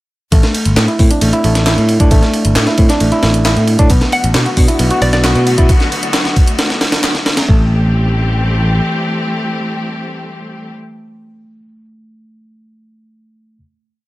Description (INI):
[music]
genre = breakbeat, breaks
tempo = 134 BPM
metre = 4/4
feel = straight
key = unclear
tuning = A4 = 441 Hz
[part]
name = reed electric piano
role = riff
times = 0.3-13.6 s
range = A3 to F#4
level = -18 LUFS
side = equal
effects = overdrive, digital delay
[part]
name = picked electric bass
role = bass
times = 0.3-8.8 s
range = G1 to B2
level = -13 LUFS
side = equal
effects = none
[part]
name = breakbeat sampler-style drum kit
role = drums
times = 0.3-7.6 s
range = hi-hat, kick drum, ride cymbal, snare drum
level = -13 LUFS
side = equal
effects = small room ambience
[part]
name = house drum kit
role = drums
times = 0.3-7.5 s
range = handclaps, hi-hat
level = -22 LUFS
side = equal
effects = small room ambience
[part]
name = clear studio string section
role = sustained chords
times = 3.9-10.7 s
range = D3 to G4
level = -20 LUFS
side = left 2 dB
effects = sidechain pumping
[part]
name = hollow square pluck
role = melody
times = 4.1-5.2 s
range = D5 to F#5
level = -20 LUFS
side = equal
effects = chorus, AM radio sound, digital delay
[sound]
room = digital ambience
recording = none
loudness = -10 LUFS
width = side -17 dB against mid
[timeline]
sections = 0.3-7.5 drop; 7.5-11.1 final chord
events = drop 0.3-7.5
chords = 0.3 Am; 3.9 Bm7; 7.5 Am7